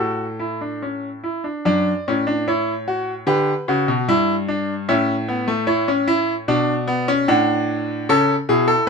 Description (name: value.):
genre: classical, baroque-style 3-part fugue for grand piano.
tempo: 74 BPM.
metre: 4/4.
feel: straight.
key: D major.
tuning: A4 = 444 Hz.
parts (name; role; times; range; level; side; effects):
bright grand piano; solo; 0.0-8.9 s; F#2 to F#5; -18 LUFS; equal; none.
room: little or no reverb.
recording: close, detailed microphones.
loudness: -18 LUFS.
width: side -5 dB against mid.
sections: 0.0-1.6 A section; 1.6-8.9 B section.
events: none.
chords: 0.0 A; 1.6 D/F#; 3.3 G; 4.9 A; 6.5 D; 8.1 A.